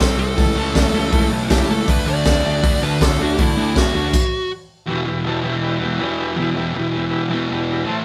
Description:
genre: garage rock duo or trio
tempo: 160 BPM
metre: 4/4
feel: straight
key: E minor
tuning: A4 = 441 Hz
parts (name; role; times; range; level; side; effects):
- fuzz lead guitar; melody; 0.0-4.5 s; E4 to D5; -25 LUFS; equal; distortion
- overdriven combo organ; sustained chords; 0.0-8.0 s; C4 to C5; -31 LUFS; equal; none
- fuzz guitar; riff; 0.0-8.0 s; E2 to D4; -23 LUFS; equal; distortion
- fuzz picked electric bass; bass; 0.0-4.1 s; B1 to D2; -25 LUFS; equal; overdrive
- crunchy breakbeat drum kit; drums; 0.0-4.2 s; crash cymbal, hi-hat, kick drum, snare drum; -21 LUFS; equal; none
room: light reverb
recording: band playing live in one room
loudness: -19 LUFS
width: mono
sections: 0.0-4.9 A section; 4.9-8.0 B section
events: stop 4.1-4.9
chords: 0.4 A/C#; 1.9 D; 4.9 Em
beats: 0.00 | 0.38 0.75 1.13 1.50 | 1.88 2.25 2.63 3.00 | 3.38 3.76 4.13 4.51 | 4.88 5.26 5.63 6.00 | 6.38 6.75 7.13 7.50 | 7.87

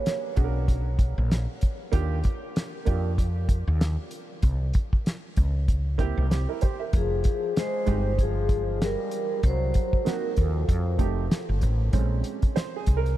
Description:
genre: hip hop, jazz-hop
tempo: 96 BPM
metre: 4/4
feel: swing 57% on 16ths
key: Bb dorian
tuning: A4 = 439 Hz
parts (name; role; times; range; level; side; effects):
- vibraphone with medium mallets; melody; 0.0-0.3, 7.0-11.6 s; Ab4 to Db5; -32 LUFS; right 1 dB; tape echo
- breathy trombone; second line; 0.0-0.3, 6.9-11.6 s; F3 to Bb3; -37 LUFS; left 7 dB; tape echo
- cloth-damped thuddy drum kit; drums; 0.1-13.2 s; hi-hat, kick drum, snare drum; -25 LUFS; equal; none
- dark grand piano; accompaniment; 0.4-13.2 s; Ab3 to E5; -34 LUFS; right 8 dB; wide subtle chorus
- woody fretless electric bass; bass; 0.4-13.2 s; F1 to F2; -25 LUFS; equal; none
room: light reverb, studio ambience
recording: none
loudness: -23 LUFS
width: side -14 dB against mid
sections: 0.0-11.9 A section; 11.9-13.2 B section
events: grand piano solo 11.9-13.2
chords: 0.0 Bbaug; 1.9 Ebmaj9; 4.4 C7; 6.9 Fmadd9; 9.4 Cm7b5; 10.7 F7; 11.9 Bbm9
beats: 0.06 0.68 1.31 | 1.93 2.56 3.18 3.81 | 4.43 5.06 5.68 6.31 | 6.93 7.56 8.18 8.81 | 9.43 10.06 10.68 11.31 | 11.93 12.56

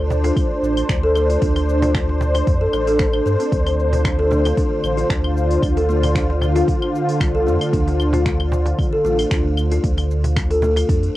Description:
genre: organic downtempo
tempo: 114 BPM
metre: 4/4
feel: swing 54% on 16ths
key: unclear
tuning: A4 = 442 Hz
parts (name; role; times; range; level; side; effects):
- warm analog pad; sustained chords; 0.0-11.2 s; D3 to C5; -21 LUFS; equal; chorus, sidechain pumping, cassette tape
- warm sub bass; bass; 0.0-11.1 s; A1 to G2; -20 LUFS; equal; tube saturation, sidechain pumping
- deep house drum kit; drums; 0.1-11.1 s; cabasa, claves, finger snaps, hi-hat; -29 LUFS; left 1 dB; cassette tape
- cajon; percussion; 0.1-10.9 s; none; -28 LUFS; right 2 dB; none
- buzzing kalimba; arpeggios; 0.2-11.0 s; A3 to C5; -22 LUFS; equal; cassette tape, tape echo
- electronic kick drum; drums; 0.4-11.0 s; none; -21 LUFS; equal; cassette tape
room: light reverb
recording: home recording on cassette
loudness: -16 LUFS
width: side -15 dB against mid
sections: 0.0-11.2 A section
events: none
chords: 0.0 F6/A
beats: 0.36 0.89 | 1.42 1.94 2.47 3.00 | 3.52 4.05 4.57 5.10 | 5.63 6.15 6.68 7.21 | 7.73 8.26 8.79 9.31 | 9.84 10.36 10.89

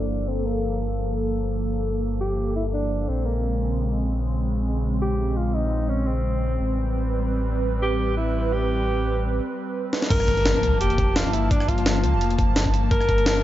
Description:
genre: liquid drum and bass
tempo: 171 BPM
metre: 4/4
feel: swing 54% on 16ths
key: unclear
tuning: A4 = 439 Hz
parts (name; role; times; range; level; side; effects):
- breathy alto saxophone; melody; 0.0-13.4 s; Bb3 to Bb4; -27 LUFS; equal; diffuse ambient delay
- airy breathy pad; sustained chords; 0.0-13.4 s; Db3 to A5; -27 LUFS; right 1 dB; chorus, vintage 12-bit sampler grit
- sub bass with octave; bass; 0.0-13.4 s; F1 to D2; -25 LUFS; equal; none
- sub drop and impact; sound effects; 0.0-0.3, 10.1-11.5 s; none; -29 LUFS; equal; none
- jungle sampler-style drum kit; drums; 9.9-13.3 s; crash cymbal, hi-hat, rim click, snare drum; -26 LUFS; equal; none
- electronic kick drum; drums; 10.1-13.2 s; none; -23 LUFS; equal; overdrive
room: light reverb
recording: low-pass filter, nothing above 7.6 kHz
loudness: -21 LUFS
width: side -13 dB against mid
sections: 0.0-10.1 A section; 10.1-13.4 B section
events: impact 0.0, 10.1-11.5; filter sweep 0.0-10.1; break 9.4-10.1; drum fill 9.9; drop 10.1-13.4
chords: 0.0 Gm9; 3.1 Bbm9; 6.6 Am9; 10.1 Gm9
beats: | 0.28 0.63 0.98 1.33 | 1.68 2.04 2.39 2.74 | 3.09 3.44 3.79 4.14 | 4.49 4.84 5.19 5.54 | 5.89 6.25 6.60 6.95 | 7.30 7.65 8.00 8.35 | 8.70 9.05 9.40 9.76 | 10.11 10.46 10.81 11.16 | 11.51 11.86 12.21 12.56 | 12.91 13.26

